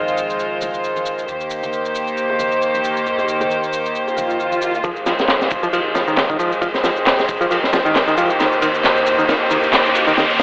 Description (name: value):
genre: breakbeat, breaks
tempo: 135 BPM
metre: 4/4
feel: swing 56% on 16ths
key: F minor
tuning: A4 = 440 Hz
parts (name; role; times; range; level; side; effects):
- warm studio string section; sustained chords; 0.0-10.4 s; Eb3 to C5; -18 LUFS; equal; sidechain pumping, low-pass filter
- upright bass; bass; 0.0-4.8 s; Eb2 to F2; -43 LUFS; equal; tube saturation
- electronic shaker and handclaps; drums; 0.1-10.4 s; none; -22 LUFS; equal; none
- congas and bongos; percussion; 0.6-4.6 s; none; -33 LUFS; equal; none
- swell and riser; sound effects; 4.1-10.4 s; none; -22 LUFS; equal; none
- picked electric bass; riff; 4.8-10.4 s; Eb3 to F3; -21 LUFS; equal; overdrive, low-pass filter, dub echo
- crunchy breakbeat drum kit; drums; 4.8-10.4 s; kick drum, ride cymbal, snare drum; -19 LUFS; equal; low-pass filter on kick, low-pass filter on cymbals, low-pass filter on snare, low-pass filter on room
room: wet digital room reverb, RT60 1.0 s, small room ambience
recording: vinyl crackle, telephone sound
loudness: -15 LUFS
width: side -34 dB against mid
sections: 0.0-4.8 A section; 4.8-10.4 B section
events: swell 4.1-4.8; build-up 4.8-10.4; filter sweep on picked electric bass 4.8-10.4; drum fill 8.4-10.4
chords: 0.0 Fm7; 1.3 Eb6; 4.8 Fm7; 8.4 Eb6